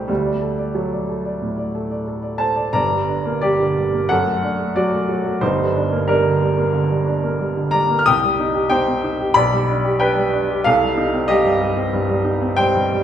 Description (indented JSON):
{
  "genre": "classical, romantic character piece for solo piano",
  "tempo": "91 BPM",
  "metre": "4/4",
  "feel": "rubato",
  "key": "G minor",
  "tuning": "A4 = 439 Hz",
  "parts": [
    { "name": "warm baby grand piano", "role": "solo", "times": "0.0-13.0 s", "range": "G1 to F6", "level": "-16 LUFS", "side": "equal", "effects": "none" }
  ],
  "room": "wet recital hall reverb, RT60 1.7 s",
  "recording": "heard from further back in the room",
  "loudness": "-16 LUFS",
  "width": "side -9 dB against mid",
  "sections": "0.0-2.7 A section; 2.7-13.0 B section",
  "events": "none",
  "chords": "0.1 D; 2.7 Gm; 4.1 D/F#; 5.4 Gm; 8.0 Cm; 9.3 G/B; 10.6 Cm",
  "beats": "| 0.09 0.76 1.42 2.07 | 2.74 3.42 4.09 4.75 | 5.41 6.07 6.72 7.38 | 8.04 8.69 9.34 9.99 | 10.64 11.29 11.93 12.58"
}